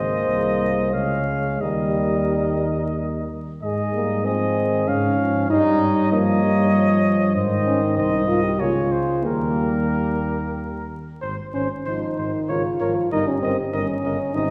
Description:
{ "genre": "classical, brass quintet", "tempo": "88-98 BPM", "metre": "3/4", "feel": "rubato", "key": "Ab major", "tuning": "A4 = 440 Hz", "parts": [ { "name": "bright trumpet", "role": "melody", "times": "0.0-14.5 s", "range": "Bb4 to F5", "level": "-29 LUFS", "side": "equal", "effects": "none" }, { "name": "mellow flugelhorn", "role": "second line", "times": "0.0-14.5 s", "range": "G4 to Db5", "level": "-32 LUFS", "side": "equal", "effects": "none" }, { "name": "mellow French horn", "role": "accompaniment", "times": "0.0-14.5 s", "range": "Bb3 to Ab4", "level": "-26 LUFS", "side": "equal", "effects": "none" }, { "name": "warm euphonium", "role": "accompaniment", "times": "0.0-14.5 s", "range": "C3 to Bb3", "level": "-29 LUFS", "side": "equal", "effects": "none" }, { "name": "dark tuba", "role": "bass", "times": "0.0-14.5 s", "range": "G1 to Ab2", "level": "-27 LUFS", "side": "equal", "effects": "none" } ], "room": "wet scoring stage reverb, RT60 2.0 s", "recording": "heard from further back in the room, vinyl crackle", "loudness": "-21 LUFS", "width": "mono", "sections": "0.0-3.6 A section; 3.6-14.5 B section", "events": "none", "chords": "0.0 Ab; 0.9 Db; 1.6 Eb; 3.6 Ab; 4.9 Db/Ab; 5.5 Eb7/G; 7.4 Ab; 8.6 Db; 9.3 Eb; 11.2 Ab; 12.5 Bbm7/Ab; 13.1 Eb7/G" }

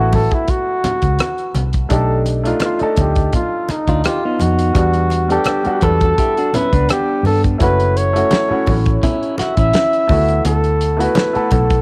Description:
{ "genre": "lush 1970s-style soul", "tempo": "84 BPM", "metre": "4/4", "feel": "swing 54% on 16ths", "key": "D major", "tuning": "A4 = 440 Hz", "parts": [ { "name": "warm flugelhorn", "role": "melody", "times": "0.0-11.8 s", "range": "D#4 to E5", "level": "-21 LUFS", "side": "equal", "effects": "cassette tape" }, { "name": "warm baby grand piano", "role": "accompaniment", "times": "0.0-11.8 s", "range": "G3 to A4", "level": "-24 LUFS", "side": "equal", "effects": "cassette tape" }, { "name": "vintage muted fingered electric bass", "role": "bass", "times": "0.0-11.8 s", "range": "F#1 to G2", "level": "-20 LUFS", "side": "equal", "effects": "none" }, { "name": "warm soul drum kit", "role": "drums", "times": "0.1-11.8 s", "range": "hi-hat, kick drum, rim click, snare drum", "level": "-21 LUFS", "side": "equal", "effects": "cassette tape" }, { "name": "congas", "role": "percussion", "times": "0.1-11.7 s", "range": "none", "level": "-28 LUFS", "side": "equal", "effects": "none" }, { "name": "clean electric guitar", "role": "riff", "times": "3.9-10.1 s", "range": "B3 to B4", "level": "-23 LUFS", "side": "equal", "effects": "cassette tape" } ], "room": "small room ambience", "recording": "home recording on cassette", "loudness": "-16 LUFS", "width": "mono", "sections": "0.0-11.8 A section", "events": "flugelhorn solo 0.0-11.8", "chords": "0.0 D69 (rootless); 1.9 B7alt; 4.8 Em9; 7.6 F#m7; 10.1 D69" }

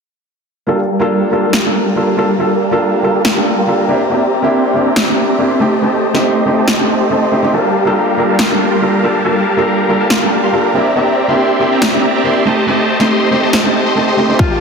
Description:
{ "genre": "future bass", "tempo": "140 BPM", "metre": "4/4", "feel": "half-time", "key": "G minor", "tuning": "A4 = 440 Hz", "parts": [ { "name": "felt-muted upright piano", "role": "accompaniment", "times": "0.7-14.4 s", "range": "A3 to A4", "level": "-16 LUFS", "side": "right 1 dB", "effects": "sidechain pumping, ping-pong delay" }, { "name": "supersaw chords", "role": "riff", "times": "0.7-14.6 s", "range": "G3 to C6", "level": "-13 LUFS", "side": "equal", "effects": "phaser, sidechain pumping, low-pass filter, ping-pong delay" }, { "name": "electronic snare drum", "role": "drums", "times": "1.5-13.6 s", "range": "none", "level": "-18 LUFS", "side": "equal", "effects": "none" }, { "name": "Celtic harp", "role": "arpeggios", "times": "14.4-14.6 s", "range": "F4 to G4", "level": "-16 LUFS", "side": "left 3 dB", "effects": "sidechain pumping" }, { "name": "electronic kick drum", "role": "drums", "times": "14.4-14.5 s", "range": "none", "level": "-12 LUFS", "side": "equal", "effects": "none" } ], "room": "moderate shimmer reverb, RT60 5.6 s", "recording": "dense, heavily limited modern master", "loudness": "-11 LUFS", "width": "side -5 dB against mid", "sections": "0.7-14.6 A section", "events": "filter sweep on supersaw synth 0.7-14.6", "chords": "0.7 Gm7; 3.9 C7; 5.6 Am7b5; 7.5 Gm7; 10.7 C7; 12.5 Am7b5" }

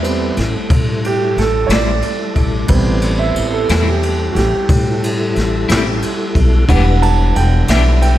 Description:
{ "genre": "slow blues", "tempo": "60 BPM (dotted quarters)", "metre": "12/8", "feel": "straight", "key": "unclear", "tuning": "A4 = 440 Hz", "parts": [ { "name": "warm concert grand piano", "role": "accompaniment", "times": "0.0-8.2 s", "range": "G3 to A5", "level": "-19 LUFS", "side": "right 5 dB", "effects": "slapback echo" }, { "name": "mellow tonewheel organ", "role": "sustained chords", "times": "0.0-8.2 s", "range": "G3 to B4", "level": "-22 LUFS", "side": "left 2 dB", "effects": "chorus vibrato, slow rotary speaker" }, { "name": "upright bass", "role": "bass", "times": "0.0-8.2 s", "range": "E1 to A2", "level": "-16 LUFS", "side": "equal", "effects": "none" }, { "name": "jazz brush drum kit", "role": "drums", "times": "0.0-8.2 s", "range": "kick drum, ride cymbal, snare drum", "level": "-18 LUFS", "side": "equal", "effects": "none" }, { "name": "electric guitar at the edge of break-up", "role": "accompaniment", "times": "1.7-7.9 s", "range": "A2 to G4", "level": "-24 LUFS", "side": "left 6 dB", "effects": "tremolo, slapback echo" } ], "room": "light reverb, small room reverb", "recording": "none", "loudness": "-12 LUFS", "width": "side -13 dB against mid", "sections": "0.0-8.2 A section", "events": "grand piano solo 0.0-8.2", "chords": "0.0 Am7; 6.7 Em7" }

